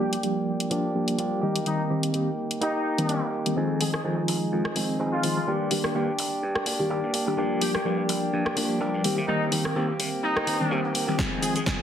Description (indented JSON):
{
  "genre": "filtered disco house",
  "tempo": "126 BPM",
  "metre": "4/4",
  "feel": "swing 55% on 16ths",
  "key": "F dorian",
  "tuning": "A4 = 440 Hz",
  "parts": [
    { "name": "bright trumpet section", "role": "melody", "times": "0.0-11.6 s", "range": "Eb4 to Ab4", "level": "-32 LUFS", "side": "left 1 dB", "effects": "vintage 12-bit sampler grit, sidechain pumping, low-pass filter, tape echo" },
    { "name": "mellow reed electric piano", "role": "accompaniment", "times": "0.0-11.8 s", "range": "Eb3 to G4", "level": "-27 LUFS", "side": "left 1 dB", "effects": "fast tremolo, phaser, vintage 12-bit sampler grit, sidechain pumping, low-pass filter" },
    { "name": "direct-recorded clean electric guitar", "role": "riff", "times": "0.0-11.8 s", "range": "Eb3 to Ab4", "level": "-29 LUFS", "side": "right 1 dB", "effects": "sidechain pumping, low-pass filter" },
    { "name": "egg shaker", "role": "percussion", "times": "0.0-11.8 s", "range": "none", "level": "barely audible", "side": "none", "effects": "none" },
    { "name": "house drum kit", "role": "drums", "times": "0.1-11.8 s", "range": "hi-hat, rim click, shaker, snare drum", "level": "-30 LUFS", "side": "left 1 dB", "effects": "sidechain pumping on hats, studio reverb, sidechain pumping on perc" },
    { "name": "slap bass", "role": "bass", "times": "3.6-11.8 s", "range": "F1 to C3", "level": "-36 LUFS", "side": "equal", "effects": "sidechain pumping, high-pass filter, low-pass filter" },
    { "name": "electronic kick drum", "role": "drums", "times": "11.2-11.8 s", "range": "none", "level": "-30 LUFS", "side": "equal", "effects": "studio reverb" }
  ],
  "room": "wet digital room reverb, RT60 1.2 s",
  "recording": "heavily compressed radio sound",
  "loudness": "-23 LUFS",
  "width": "side -9 dB against mid",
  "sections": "0.0-3.6 A section; 3.6-11.8 B section",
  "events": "filter sweep 0.0-3.6, 3.6-11.8; build-up 3.6-11.8; drum fill 11.2-11.8",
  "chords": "0.0 Gm7; 1.4 Cm7; 3.6 Fm7; 5.5 Ebmaj7/G; 7.4 Gm7; 9.0 Cm7; 11.2 Fm7"
}